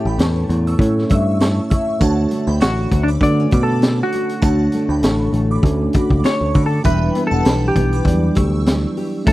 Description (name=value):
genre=indie pop, bedroom pop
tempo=99 BPM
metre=4/4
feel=swing 55% on 16ths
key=D major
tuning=A4 = 441 Hz
part: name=semi-hollow electric guitar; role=melody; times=0.0-9.3 s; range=D4 to D5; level=-23 LUFS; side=left 1 dB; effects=analog chorus, tape echo
part: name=nylon-string guitar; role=accompaniment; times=0.0-9.3 s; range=A2 to A4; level=-23 LUFS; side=left 3 dB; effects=lush chorus, vibrato effect
part: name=tine electric piano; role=accompaniment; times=0.0-9.3 s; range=F#3 to F#5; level=-22 LUFS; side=right 2 dB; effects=overdrive, cassette tape
part: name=shimmering bell with halo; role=second line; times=0.1-8.8 s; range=E5 to E6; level=-31 LUFS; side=right 5 dB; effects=ensemble chorus, phaser, analog chorus, tape echo
part: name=picked electric bass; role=bass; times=0.1-8.8 s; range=E1 to D3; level=-18 LUFS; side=equal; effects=none
part: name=raw garage drum kit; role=drums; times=0.2-9.3 s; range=hi-hat, kick drum, snare drum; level=-18 LUFS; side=equal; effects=none
room=little or no reverb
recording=dry, close 1970s-style studio recording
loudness=-14 LUFS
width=side -17 dB against mid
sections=0.0-9.3 A section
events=clean electric guitar solo 0.0-9.3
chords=0.0 A; 2.0 Dmaj7; 6.9 Em7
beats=0.19 0.80 1.41 | 2.01 2.62 3.22 3.83 | 4.43 5.04 5.64 6.25 | 6.85 7.46 8.06 8.66 | 9.27